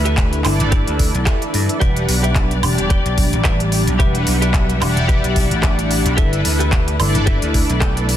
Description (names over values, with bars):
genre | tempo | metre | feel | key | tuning
nu-disco, nu disco | 110 BPM | 4/4 | swing 56% on 16ths | E minor | A4 = 437 Hz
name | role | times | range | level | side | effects
mellow synth brass | accompaniment | 0.0-8.2 s | D4 to F#5 | -22 LUFS | equal | chorus, ping-pong delay
muted studio string section | sustained chords | 0.0-8.2 s | G3 to E5 | -26 LUFS | left 1 dB | sidechain pumping
vintage slap bass | bass | 0.0-8.2 s | E1 to G2 | -18 LUFS | equal | none
direct-recorded clean electric guitar | riff | 0.1-8.1 s | G4 to G5 | -26 LUFS | right 2 dB | wide subtle chorus, ping-pong delay
pop drum kit | drums | 0.1-8.2 s | handclaps, hi-hat, woodblock | -23 LUFS | right 1 dB | studio reverb
electronic kick drum | drums | 0.2-7.9 s | none | -17 LUFS | equal | studio reverb
room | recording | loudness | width
little or no reverb | dense, heavily limited modern master | -14 LUFS | side -11 dB against mid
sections
0.0-8.2 A section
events
none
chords
0.0 G69; 1.8 Em7; 6.2 G69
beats
0.18 0.72 1.27 | 1.81 2.36 2.91 3.45 | 4.00 4.54 5.09 5.63 | 6.18 6.72 7.27 7.82